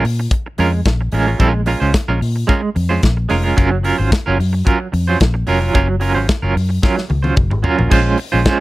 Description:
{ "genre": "disco", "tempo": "110 BPM", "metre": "4/4", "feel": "straight", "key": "Bb minor", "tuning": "A4 = 440 Hz", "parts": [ { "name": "semi-hollow electric guitar", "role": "accompaniment", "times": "0.0-8.6 s", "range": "Gb3 to C5", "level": "-17 LUFS", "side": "right 4 dB", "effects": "tremolo" }, { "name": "vintage muted fingered electric bass", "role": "bass", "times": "0.0-8.4 s", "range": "F1 to Bb2", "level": "-17 LUFS", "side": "left 1 dB", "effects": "none" }, { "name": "modern studio drum kit", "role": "drums", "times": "0.0-8.6 s", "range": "crash cymbal, hi-hat, kick drum, snare drum, toms", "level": "-17 LUFS", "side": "left 1 dB", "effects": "none" } ], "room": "little or no reverb", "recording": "dry, close 1970s-style studio recording", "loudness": "-13 LUFS", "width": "side -18 dB against mid", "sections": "0.0-7.9 A section", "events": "drum fill 6.8-7.9", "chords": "0.0 Bbm7; 3.6 Gbmaj7; 7.9 Bbm9" }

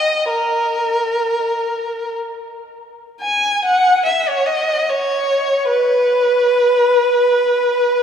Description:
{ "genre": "classical, free, expressive piece for unaccompanied violin", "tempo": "48-78 BPM", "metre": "3/4", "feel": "rubato", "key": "unclear", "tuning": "A4 = 440 Hz", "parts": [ { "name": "warm violin", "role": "solo", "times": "0.0-8.0 s", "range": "A#4 to G#5", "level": "-14 LUFS", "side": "equal", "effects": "none" } ], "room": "wet cathedral reverb, RT60 4.2 s", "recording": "recorded in a church or concert hall", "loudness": "-14 LUFS", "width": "side -7 dB against mid", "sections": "0.0-3.2 A section; 3.2-8.0 B section", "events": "none", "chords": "none" }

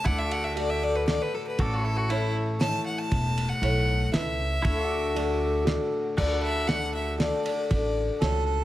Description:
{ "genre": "honky-tonk and classic country", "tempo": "118 BPM", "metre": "3/4", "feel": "straight", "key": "D major", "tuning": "A4 = 440 Hz", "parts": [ { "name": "rich fiddle", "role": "melody", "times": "0.0-8.2 s", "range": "E4 to A5", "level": "-30 LUFS", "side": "left 2 dB", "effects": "slapback echo" }, { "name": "picked steel-string acoustic guitar", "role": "accompaniment", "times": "0.0-8.6 s", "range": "A2 to C#5", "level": "-31 LUFS", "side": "left 3 dB", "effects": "none" }, { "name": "pedal steel guitar", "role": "sustained chords", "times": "0.0-8.6 s", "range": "D4 to D5", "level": "-35 LUFS", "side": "right 2 dB", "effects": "none" }, { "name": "upright bass", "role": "bass", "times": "0.1-8.6 s", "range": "E1 to D2", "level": "-29 LUFS", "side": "equal", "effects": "none" }, { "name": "cloth-damped thuddy drum kit", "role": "drums", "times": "0.1-8.3 s", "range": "crash cymbal, kick drum, ride cymbal, snare drum", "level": "-31 LUFS", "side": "right 1 dB", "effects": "none" }, { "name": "dark upright piano", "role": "accompaniment", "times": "0.6-8.6 s", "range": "E4 to D5", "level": "-36 LUFS", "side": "right 6 dB", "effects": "none" }, { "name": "warm harmonica", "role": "second line", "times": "8.2-8.6 s", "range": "A4", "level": "-30 LUFS", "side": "right 7 dB", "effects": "none" } ], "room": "light reverb", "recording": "close, detailed microphones", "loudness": "-24 LUFS", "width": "side -14 dB against mid", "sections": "0.0-6.2 A section; 6.2-8.6 B section", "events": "fiddle solo 0.0-6.2", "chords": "0.1 D; 1.6 A; 4.6 D" }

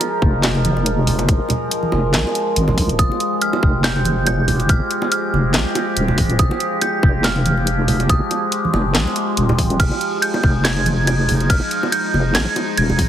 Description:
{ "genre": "deep dubstep", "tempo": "141 BPM", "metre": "4/4", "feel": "swing 55% on 16ths, half-time", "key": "F minor", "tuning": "A4 = 440 Hz", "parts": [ { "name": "overtone-sweeping drone", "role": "sustained chords", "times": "0.0-13.1 s", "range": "F3 to Bb4", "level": "-22 LUFS", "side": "equal", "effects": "chorus, built-in reverb" }, { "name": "garage drum kit", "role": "drums", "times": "0.0-13.1 s", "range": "crash cymbal, handclaps, hi-hat, snare drum", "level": "-22 LUFS", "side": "equal", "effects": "none" }, { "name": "bongos and congas", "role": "percussion", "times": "0.0-13.1 s", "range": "none", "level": "-24 LUFS", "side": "right 2 dB", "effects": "none" }, { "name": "deep soft wobble bass", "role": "bass", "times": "0.2-13.1 s", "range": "Eb1 to C2", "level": "-18 LUFS", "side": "equal", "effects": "chorus, tube saturation" }, { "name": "electronic kick drum", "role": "drums", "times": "0.2-13.1 s", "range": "none", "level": "-17 LUFS", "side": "equal", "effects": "none" }, { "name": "dark detuned synth bell", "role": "melody", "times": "3.0-13.1 s", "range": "Eb6 to Ab6", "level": "-22 LUFS", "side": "right 2 dB", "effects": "chorus, dub echo" } ], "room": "light reverb, digital ambience", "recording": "heavily compressed radio sound, multiband compression", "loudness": "-15 LUFS", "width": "side -10 dB against mid", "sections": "0.0-13.1 A section", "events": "none", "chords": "0.0 Fmadd9" }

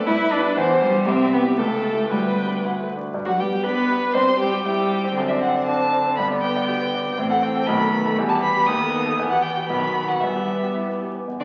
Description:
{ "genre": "quick classical-period movement for piano quartet", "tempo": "118 BPM", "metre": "2/4", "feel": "straight", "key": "G major, E minor from 7.2 s", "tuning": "A4 = 439 Hz", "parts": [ { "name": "clear violin", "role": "melody", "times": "0.0-11.4 s", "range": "B4 to D#6", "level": "-26 LUFS", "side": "equal", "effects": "none" }, { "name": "rich cello", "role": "second line", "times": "0.0-11.4 s", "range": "D3 to E4", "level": "-27 LUFS", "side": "equal", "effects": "none" }, { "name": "rich viola", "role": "accompaniment", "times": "0.0-11.4 s", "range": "G3 to C5", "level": "-27 LUFS", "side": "equal", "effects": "none" }, { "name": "warm baby grand piano", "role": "accompaniment", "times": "0.0-11.4 s", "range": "B1 to D5", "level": "-27 LUFS", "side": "equal", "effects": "none" } ], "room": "wet recital hall reverb, RT60 1.3 s", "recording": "very old 78 rpm record, vinyl crackle, nothing above 7.6 kHz", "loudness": "-21 LUFS", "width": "mono", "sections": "0.0-3.1 A section; 3.1-11.3 B section", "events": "none", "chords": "0.1 G; 0.6 C/E; 1.1 C; 1.6 A7/C#; 2.1 G/D; 2.6 D; 3.1 G; 4.1 C/G; 5.2 D7/F#; 6.2 G; 7.2 Am; 7.7 B7; 8.2 Em; 8.7 B7/D#; 9.2 Em; 9.7 B; 10.2 Em" }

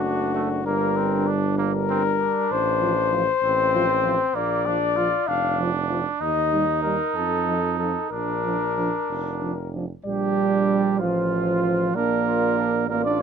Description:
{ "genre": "classical, brass quintet", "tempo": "64 BPM (dotted quarters)", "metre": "6/8", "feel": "straight", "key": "Bb major", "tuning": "A4 = 440 Hz", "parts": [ { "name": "mellow trumpet", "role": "melody", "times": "0.0-13.2 s", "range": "D4 to F5", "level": "-24 LUFS", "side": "left 8 dB", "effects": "none" }, { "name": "warm trumpet", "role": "second line", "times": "0.0-13.2 s", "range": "A3 to D5", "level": "-27 LUFS", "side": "right 8 dB", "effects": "none" }, { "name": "mellow French horn", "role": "accompaniment", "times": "0.0-13.2 s", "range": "D4 to D5", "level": "-29 LUFS", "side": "left 4 dB", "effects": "none" }, { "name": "mellow trombone", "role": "accompaniment", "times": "0.0-13.2 s", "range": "F3 to D4", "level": "-25 LUFS", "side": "right 5 dB", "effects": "none" }, { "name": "warm tuba", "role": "bass", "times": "0.0-13.2 s", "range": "F1 to F2", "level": "-29 LUFS", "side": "right 5 dB", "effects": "none" } ], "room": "light reverb", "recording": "close, detailed microphones", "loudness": "-20 LUFS", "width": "side -7 dB against mid", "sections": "0.0-10.1 A section; 10.1-13.2 A section", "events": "none", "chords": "0.0 D/F#; 0.7 Gm; 2.5 F/A; 4.4 Bb; 6.2 Eb; 7.2 F7; 8.1 Bb; 11.0 F/A; 12.0 Bb" }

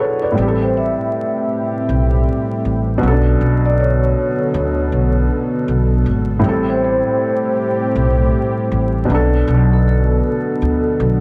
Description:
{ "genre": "hip hop", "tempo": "79 BPM", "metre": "4/4", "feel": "swing 61% on 16ths", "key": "A dorian", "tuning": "A4 = 440 Hz", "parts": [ { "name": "felt-muted upright piano", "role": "accompaniment", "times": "0.0-11.2 s", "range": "A2 to D5", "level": "-21 LUFS", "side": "equal", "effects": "cassette tape, low-pass filter" }, { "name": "dark analog pad", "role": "sustained chords", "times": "1.1-11.2 s", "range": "D3 to A4", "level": "-26 LUFS", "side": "equal", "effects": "chorus, low-pass filter" }, { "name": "upright bass", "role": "bass", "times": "0.4-11.2 s", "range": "G#1 to D2", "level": "-19 LUFS", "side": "equal", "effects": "none" }, { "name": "vibraphone with soft mallets", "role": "melody", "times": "0.6-11.2 s", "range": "A4 to E5", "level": "-24 LUFS", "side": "equal", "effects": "low-pass filter, tape echo" } ], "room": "moderate studio reverb, RT60 0.6 s", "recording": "vinyl crackle", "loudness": "-16 LUFS", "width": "mono", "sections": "0.4-11.2 A section", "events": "none", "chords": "0.4 Am7; 3.0 Bm7; 6.4 Am7; 9.1 Bm7" }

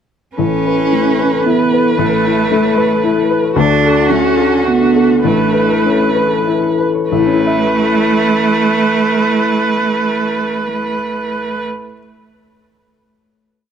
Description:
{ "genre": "neoclassical piano and strings", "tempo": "93-114 BPM", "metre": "3/4", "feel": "rubato", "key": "A major", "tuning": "A4 = 439 Hz", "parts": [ { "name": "rich cello", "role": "second line", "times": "0.4-11.6 s", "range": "A3 to D4", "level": "-16 LUFS", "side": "right 4 dB", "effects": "none" }, { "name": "rich viola", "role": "accompaniment", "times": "0.4-11.6 s", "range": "F#4 to B4", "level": "-18 LUFS", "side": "right 2 dB", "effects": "none" }, { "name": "warm upright piano", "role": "accompaniment", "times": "0.4-12.0 s", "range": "A1 to E5", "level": "-16 LUFS", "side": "left 3 dB", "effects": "none" }, { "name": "concert harp", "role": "arpeggios", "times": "0.4-10.8 s", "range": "A3 to D6", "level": "-20 LUFS", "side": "left 8 dB", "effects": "tape echo" } ], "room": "light reverb", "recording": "none", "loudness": "-11 LUFS", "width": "side -8 dB against mid", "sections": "0.4-7.1 theme; 7.1-10.9 final chord", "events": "slowing down 2.8-7.1", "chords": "0.4 Aadd9; 3.6 D; 5.2 Aadd9" }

